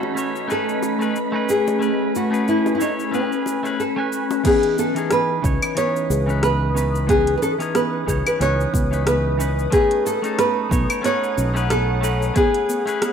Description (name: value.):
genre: sunset chillout.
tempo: 91 BPM.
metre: 4/4.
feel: swing 56% on 16ths.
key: C# minor.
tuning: A4 = 435 Hz.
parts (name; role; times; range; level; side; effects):
nylon-string guitar; melody; 0.0-13.1 s; C#4 to C#5; -22 LUFS; equal; tape echo.
clean electric guitar; accompaniment; 0.0-13.1 s; E3 to G#5; -26 LUFS; equal; auto-pan, low-pass filter.
ethereal airy pad; sustained chords; 0.0-13.1 s; A3 to D#6; -26 LUFS; left 1 dB; ensemble chorus, built-in reverb, phaser.
bongos; percussion; 0.0-4.4 s; none; -31 LUFS; left 6 dB; none.
wind-like tuned noise texture; texture; 0.0-4.5 s; B5; -34 LUFS; right 4 dB; built-in reverb.
deep house drum kit; drums; 0.2-13.1 s; cabasa, claves, crash cymbal, hi-hat, rim click; -27 LUFS; left 1 dB; overdrive, studio reverb.
soft round pluck; arpeggios; 4.4-13.1 s; B3 to A4; -29 LUFS; right 3 dB; chorus, tape echo.
electronic kick drum; drums; 4.4-12.5 s; none; -22 LUFS; equal; overdrive, studio reverb.
fingered electric bass; bass; 5.4-12.3 s; B1 to C#2; -22 LUFS; equal; tube saturation.
room: light reverb, digital ambience.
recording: rough home demo mix.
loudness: -18 LUFS.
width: side -7 dB against mid.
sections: 0.0-4.5 A section; 4.5-13.1 B section.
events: none.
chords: 0.0 B9; 1.8 Amaj9; 4.5 C#m9; 9.7 B9; 12.4 Amaj9.